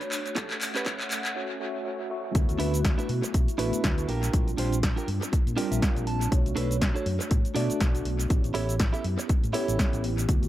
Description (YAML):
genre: filtered disco house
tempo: 121 BPM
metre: 4/4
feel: swing 57% on 16ths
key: unclear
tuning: A4 = 440 Hz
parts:
  - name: mellow tine electric piano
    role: accompaniment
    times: 0.0-10.5 s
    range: G3 to F#5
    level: -32 LUFS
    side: equal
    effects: medium stereo tremolo, phaser, sidechain pumping, low-pass filter, dub echo
  - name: hollow-body short-scale fingered electric bass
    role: bass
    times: 0.0-10.5 s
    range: A1 to B2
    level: -30 LUFS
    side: equal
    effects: tube saturation, sidechain pumping, high-pass filter, low-pass filter
  - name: punchy analog drum machine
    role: drums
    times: 0.0-10.5 s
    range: cabasa, handclaps, hi-hat, snare drum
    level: -33 LUFS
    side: equal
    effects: sidechain pumping on hats, high-pass filter on hats, sidechain pumping on perc, high-pass filter on perc, high-pass filter on snare, high-pass filter on room, dub echo
  - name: direct-recorded clean electric guitar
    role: riff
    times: 0.4-10.0 s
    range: C#4 to A5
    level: -32 LUFS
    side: right 4 dB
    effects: sidechain pumping, low-pass filter
  - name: electronic kick drum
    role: drums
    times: 0.4-10.4 s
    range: none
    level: -25 LUFS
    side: equal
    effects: none
room: light reverb, digital ambience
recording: echo-heavy mix, high-pass filter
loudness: -24 LUFS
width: side -14 dB against mid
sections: 0.0-2.4 A section; 2.4-10.5 B section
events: build-up 0.0-2.4; drum fill 0.0-1.4; filter sweep 0.0-2.4; break 1.4-2.4; drop 2.4-10.5; clean electric guitar fill 5.3-6.3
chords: 0.4 A7; 2.4 D69; 4.1 Bb6; 6.3 Bm7; 8.3 A7